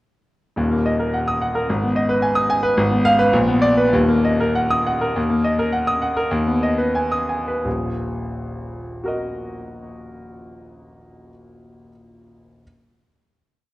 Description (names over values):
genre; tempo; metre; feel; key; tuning
classical, virtuoso piano study; 82-111 BPM; 2/4; rubato; Eb minor; A4 = 440 Hz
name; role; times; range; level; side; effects
clear concert grand piano; solo; 0.6-12.6 s; Eb1 to Eb6; -18 LUFS; equal; none
room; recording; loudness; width
wet recital hall reverb, RT60 1.3 s; worn, warbling old tape, cassette tape, warbly pitch drift; -17 LUFS; side -17 dB against mid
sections
0.6-5.2 A section; 5.2-7.7 coda; 7.7-10.4 final chord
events
slowing down 4.6-7.7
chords
0.6 Ebm; 1.7 Abm; 2.8 Fdim/Ab; 3.3 Bb; 3.9 Ebm; 6.3 Abm/Eb; 7.7 Ebm